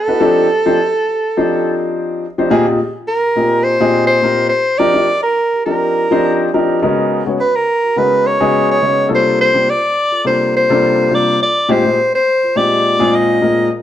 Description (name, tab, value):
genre	jazz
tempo	104 BPM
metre	4/4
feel	swing 54% on 16ths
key	Bb mixolydian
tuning	A4 = 440 Hz
part	mellow soprano saxophone	melody	0.0-13.7 s	A4 to Eb5	-14 LUFS	equal	none
part	dark concert grand piano	accompaniment	0.1-13.8 s	Bb2 to Db5	-15 LUFS	left 2 dB	none
room	moderate large studio reverb, RT60 1.2 s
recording	band playing live in one room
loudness	-12 LUFS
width	side -11 dB against mid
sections	0.0-2.5 A section; 2.5-13.8 B section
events	none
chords	0.2 F13; 2.5 Bb13sus4; 4.8 F13sus4; 6.8 Db13sus4; 9.1 C13sus4; 11.7 Bb13sus4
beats	| 0.21 0.78 1.35 1.93 | 2.50 3.08 3.65 4.22 | 4.80 5.37 5.95 6.52 | 7.10 7.67 8.25 8.82 | 9.40 9.97 10.55 11.12 | 11.70 12.27 12.85 13.42